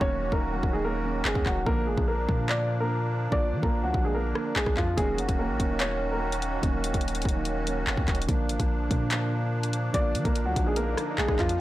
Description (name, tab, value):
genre	hip hop, drill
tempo	145 BPM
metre	4/4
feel	half-time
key	unclear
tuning	A4 = 439 Hz
part	warm upright piano	melody	0.0-6.6, 9.9-11.6 s	F3 to D5	-30 LUFS	equal	low-pass filter, tape echo
part	soft electric-piano-like synth keys	accompaniment	0.0-11.6 s	D3 to F4	-34 LUFS	right 4 dB	chorus, low-pass filter
part	musette accordion	sustained chords	0.0-11.6 s	Eb3 to Gb4	-34 LUFS	right 1 dB	none
part	long sustained 808-style bass	bass	0.0-11.6 s	Eb1 to F3	-30 LUFS	equal	none
part	drill drum kit	drums	0.0-11.6 s	handclaps, hi-hat, kick drum, rim click	-28 LUFS	equal	none
part	swell	sound effects	10.5-11.6 s	none	-38 LUFS	left 3 dB	none
room	light reverb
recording	blown-out, overdriven recording, overdrive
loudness	-24 LUFS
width	side -16 dB against mid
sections	0.0-11.6 A section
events	break 0.0-5.0; swell 10.5-11.6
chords	0.0 Ebm7; 1.7 Bb; 5.0 Ebm7; 8.3 Bb